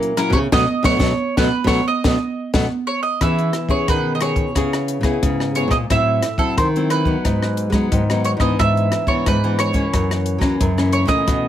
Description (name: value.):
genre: samba and choro.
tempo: 89 BPM.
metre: 4/4.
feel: straight.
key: E major.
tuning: A4 = 440 Hz.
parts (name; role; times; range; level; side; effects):
mandolin; melody; 0.0-11.5 s; A4 to E5; -22 LUFS; right 4 dB; none.
nylon-string guitar; accompaniment; 0.0-11.5 s; F#2 to G#4; -22 LUFS; left 3 dB; none.
nylon-string guitar; bass; 0.0-11.5 s; F#2 to A#3; -21 LUFS; equal; none.
compact cocktail drum kit; drums; 0.0-11.4 s; hi-hat, kick drum, rim click, snare drum; -21 LUFS; left 1 dB; none.
room: light reverb.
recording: close, detailed microphones.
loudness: -16 LUFS.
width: side -11 dB against mid.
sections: 0.0-3.2 A section; 3.2-11.5 B section.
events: band accent 0.5-3.2; drum fill 2.5-3.2.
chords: 0.0 F#7/A#; 0.5 B7; 3.2 E6; 4.6 C#m7; 5.9 Am6; 7.2 G#m7; 8.6 E7/G#; 9.9 F#7.